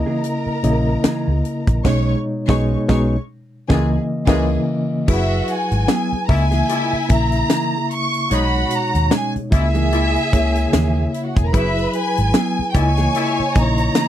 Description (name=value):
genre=lush 1970s-style soul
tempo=74 BPM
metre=4/4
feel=swing 58% on 16ths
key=C# dorian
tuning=A4 = 439 Hz
part: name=warm studio string section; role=second line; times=0.0-14.1 s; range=E4 to C#6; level=-27 LUFS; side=right 1 dB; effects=none
part: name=reed electric piano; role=accompaniment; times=0.0-14.1 s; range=B2 to E5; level=-21 LUFS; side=left 1 dB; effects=overdrive, fast tremolo
part: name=mellow electric guitar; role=riff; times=0.1-14.1 s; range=E3 to G#4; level=-24 LUFS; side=right 5 dB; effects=none
part: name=tight funk drum kit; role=drums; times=0.2-14.1 s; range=crash cymbal, hi-hat, kick drum, snare drum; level=-18 LUFS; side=equal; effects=none
part: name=vintage muted fingered electric bass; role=bass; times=0.5-13.9 s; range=E1 to D#2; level=-19 LUFS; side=equal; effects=none
part: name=warm horn section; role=stabs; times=3.7-13.4 s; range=G#2 to E4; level=-25 LUFS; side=left 4 dB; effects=none
part: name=rich studio violin section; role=melody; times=5.1-14.1 s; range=E5 to C#6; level=-22 LUFS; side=equal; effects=none
room=little or no reverb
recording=dry, close 1970s-style studio recording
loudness=-16 LUFS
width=side -11 dB against mid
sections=0.0-5.1 A section; 5.1-14.1 B section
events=band accent 1.8-5.1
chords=0.0 C#m69; 1.8 B69; 3.1 C#m69; 5.1 F#9sus4; 6.3 C#m69; 8.3 B69; 9.5 C#m69; 11.5 F#9sus4; 12.7 C#m69